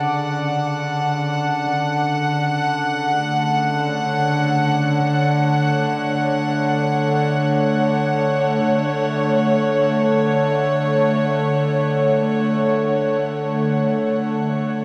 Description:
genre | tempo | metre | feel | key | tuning
ambient | free time | none | none | D major | A4 = 440 Hz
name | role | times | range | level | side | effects
warm studio string section | sustained chords | 0.0-14.8 s | C#3 to F#5 | -20 LUFS | equal | none
glass harmonica | texture | 0.0-14.8 s | A5 | -34 LUFS | equal | none
room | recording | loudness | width
wet huge ambient reverb, RT60 7.6 s | dark, warm production | -19 LUFS | mono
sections
0.0-14.8 A section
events
fade-out on glass harmonica 0.0-14.8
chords
0.0 Dmaj7

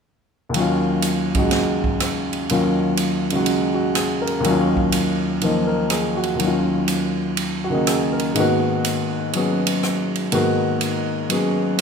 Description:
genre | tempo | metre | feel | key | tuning
modal jazz | 123 BPM | 4/4 | swing 67% on 8ths | Eb minor | A4 = 440 Hz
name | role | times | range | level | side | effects
warm upright piano | accompaniment | 0.5-11.8 s | Eb2 to Bb4 | -19 LUFS | left 1 dB | none
swinging big-band drum kit | drums | 0.5-11.8 s | hi-hat, kick drum, ride cymbal, rim click, snare drum | -26 LUFS | right 4 dB | none
room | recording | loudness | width
moderate concert hall reverb, RT60 2.2 s | minimal, uncompressed stereo recording | -18 LUFS | side -6 dB against mid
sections
0.5-11.8 A section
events
none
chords
0.5 Ebm9; 8.4 Abm9

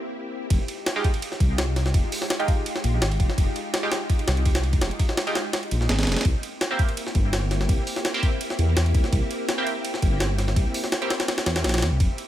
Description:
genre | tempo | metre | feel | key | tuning
drum and bass, jungle | 167 BPM | 4/4 | straight | F minor | A4 = 440 Hz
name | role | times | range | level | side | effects
soft string machine | sustained chords | 0.0-12.3 s | Ab3 to G4 | -32 LUFS | equal | ensemble chorus, vintage 12-bit sampler grit
dark detuned saw bass | bass | 0.5-12.1 s | F1 to E2 | -23 LUFS | equal | none
jungle sampler-style drum kit | drums | 0.5-12.3 s | hi-hat, kick drum, ride cymbal, snare drum | -24 LUFS | equal | overdrive, high-pass filter on snare, high-pass filter on cymbals, high-pass filter on hats, high-pass filter on kick
band-passed chord stab | stabs | 1.0-11.1 s | Ab3 to G4 | -31 LUFS | right 2 dB | chorus, phaser, dub echo
room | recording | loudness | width
little or no reverb | none | -21 LUFS | side -12 dB against mid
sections
0.5-12.3 A section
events
break 0.0-0.5; drop 0.5-12.3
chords
0.0 C7; 0.5 Fm9; 6.3 C7

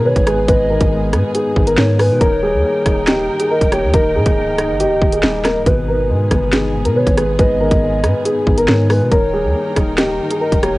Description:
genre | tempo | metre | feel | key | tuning
hip hop, drill | 139 BPM | 4/4 | half-time | G# harmonic minor | A4 = 440 Hz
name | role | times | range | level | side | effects
dark grand piano | melody | 0.0-10.8 s | G4 to B4 | -18 LUFS | left 1 dB | low-pass filter, cassette tape, tape echo
felt-muted upright piano | accompaniment | 0.0-10.8 s | G#2 to D#5 | -23 LUFS | left 2 dB | low-pass filter, cassette tape
dark studio string section | sustained chords | 0.0-10.8 s | D#3 to G5 | -27 LUFS | right 1 dB | cassette tape
long sustained 808-style bass | bass | 0.0-10.8 s | C#1 to B2 | -19 LUFS | equal | none
hollow clarinet-like synth lead | second line | 0.1-10.8 s | B4 to D#5 | -22 LUFS | right 2 dB | chorus, cassette tape, tape echo
drill drum kit | drums | 0.2-10.7 s | hi-hat, kick drum, rim click, snare drum | -16 LUFS | equal | overdrive, cassette tape
room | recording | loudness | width
little or no reverb | home recording on cassette | -12 LUFS | side -19 dB against mid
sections
0.0-10.8 A section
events
none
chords
0.0 G#m; 2.2 D#; 5.7 G#m; 9.1 D#

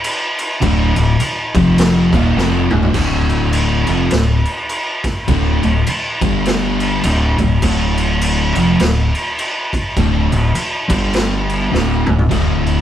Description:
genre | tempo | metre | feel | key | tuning
stoner and doom metal | 103 BPM | 4/4 | swing 59% on 8ths | D minor | A4 = 440 Hz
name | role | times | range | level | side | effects
raw garage drum kit | drums | 0.0-12.8 s | crash cymbal, kick drum, snare drum, toms | -18 LUFS | equal | none
fuzz guitar | riff | 0.6-12.8 s | D2 to G3 | -16 LUFS | left 1 dB | distortion
modern bright fingered electric bass | bass | 0.6-12.8 s | D1 to G1 | -18 LUFS | equal | overdrive
room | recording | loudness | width
moderate stone room reverb, RT60 1.1 s | band playing live in one room | -13 LUFS | side -11 dB against mid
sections
0.0-3.0 A section; 3.0-12.8 B section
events
drum fill 2.4-3.0, 11.7-12.3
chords
0.0 D5; 1.5 F5; 2.1 Dm; 6.2 G5; 7.0 Dm; 10.8 G5; 11.7 D5

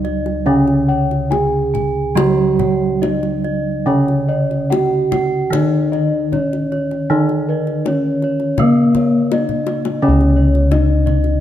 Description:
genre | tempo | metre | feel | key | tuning
Javanese gamelan | 70-86 BPM | 4/4 | straight | C# pelog barang | A4 = 443 Hz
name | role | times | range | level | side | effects
gamelan-type bronze metallophone | melody | 0.0-11.4 s | A#3+20c to G#4-40c | -19 LUFS | equal | none
gamelan-type bronze metallophone | accompaniment | 0.0-11.4 s | C#3 to A#3+20c | -20 LUFS | right 2 dB | none
gamelan-type bossed gongs | arpeggios | 0.0-11.1 s | A#4+20c to G#5-40c | -26 LUFS | left 6 dB | none
gamelan-type bronze metallophone | arpeggios | 0.0-11.4 s | A#4+20c to G#5-40c | -25 LUFS | right 4 dB | none
gamelan-type bossed gongs | bass | 0.0-11.4 s | C#2 to D4+50c | -19 LUFS | equal | none
kendang | percussion | 0.0-11.3 s | none | -25 LUFS | left 6 dB | none
room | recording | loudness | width
light reverb | close, detailed microphones | -14 LUFS | side -11 dB against mid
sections
0.0-10.0 A section; 10.0-11.4 B section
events
drum fill 9.5-10.0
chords
none

